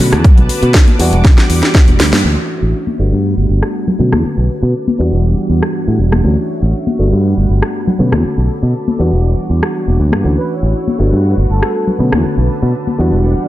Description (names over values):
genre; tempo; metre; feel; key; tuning
filtered disco house; 120 BPM; 4/4; straight; unclear; A4 = 440 Hz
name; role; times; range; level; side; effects
overdriven reed electric piano; accompaniment; 0.0-13.5 s; D3 to F#4; -18 LUFS; equal; phaser, sidechain pumping, low-pass filter
string machine, full ensemble; sustained chords; 0.0-13.5 s; D3 to D6; -23 LUFS; right 1 dB; ensemble chorus, sidechain pumping, low-pass filter
modern bright fingered electric bass; bass; 0.0-13.4 s; E1 to B2; -12 LUFS; equal; sidechain pumping, low-pass filter
house drum kit; drums; 0.0-12.2 s; crash cymbal, hi-hat, rim click, snare drum; -18 LUFS; equal; overdrive, sidechain pumping on hats, low-pass filter on hats, studio reverb, low-pass filter on snare, sidechain pumping on cymbals, low-pass filter on cymbals
congas and maracas; percussion; 0.0-13.5 s; none; -19 LUFS; left 3 dB; sidechain pumping on perc, low-pass filter on perc
electronic kick drum; drums; 0.2-1.9 s; none; -7 LUFS; equal; overdrive, studio reverb
analog synth brass; melody; 10.4-12.0 s; A4 to B4; -25 LUFS; right 2 dB; chorus, sidechain pumping, low-pass filter, dub echo
room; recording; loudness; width
light reverb, digital ambience; none; -10 LUFS; side -15 dB against mid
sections
0.0-2.2 A section; 2.2-13.5 B section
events
filter sweep 0.0-2.2, 2.2-13.5; drum fill 1.2-2.2; band accent 2.1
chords
0.0 Bm7; 1.0 Em9; 2.2 Dmaj9; 3.0 Gmaj7; 4.0 Bm7; 5.0 Em9; 6.2 Dmaj9; 7.0 Gmaj7; 8.0 Bm7; 9.0 Em9; 10.2 Dmaj9; 11.0 Gmaj7; 12.0 Bm7